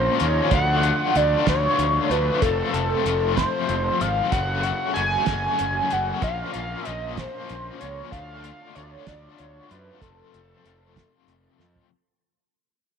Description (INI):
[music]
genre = psychedelic rock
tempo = 63 BPM (dotted quarters)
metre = 6/8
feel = straight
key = unclear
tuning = A4 = 444 Hz
[part]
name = overdriven synth lead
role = melody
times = 0.0-11.6 s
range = A4 to G#5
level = -24 LUFS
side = equal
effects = distortion, chorus, phaser, tape echo
[part]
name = tonewheel organ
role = sustained chords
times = 0.0-11.9 s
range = F3 to A#5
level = -36 LUFS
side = right 10 dB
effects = slow rotary speaker, overdrive, chorus vibrato
[part]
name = crunchy overdriven guitar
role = riff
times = 0.0-11.9 s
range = F2 to F#4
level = -28 LUFS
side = left 13 dB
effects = tremolo
[part]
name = fuzz fingered electric bass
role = bass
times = 0.0-11.8 s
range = F1 to F#2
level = -27 LUFS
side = right 1 dB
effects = overdrive
[part]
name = cloth-damped thuddy drum kit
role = drums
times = 0.2-11.9 s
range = hi-hat, kick drum, snare drum, toms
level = -26 LUFS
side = right 4 dB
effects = none
[sound]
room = moderate echo chamber reverb, RT60 2.6 s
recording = 1960s-style stereo with parts hard left and right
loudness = -20 LUFS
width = side -7 dB against mid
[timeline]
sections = 0.0-11.9 A section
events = fade-out 0.0-11.9; drum fill 11.6-11.9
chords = 0.0 A#m; 0.5 Dm; 2.4 F; 4.3 F#m; 6.2 A#m; 8.1 Dm; 10.0 F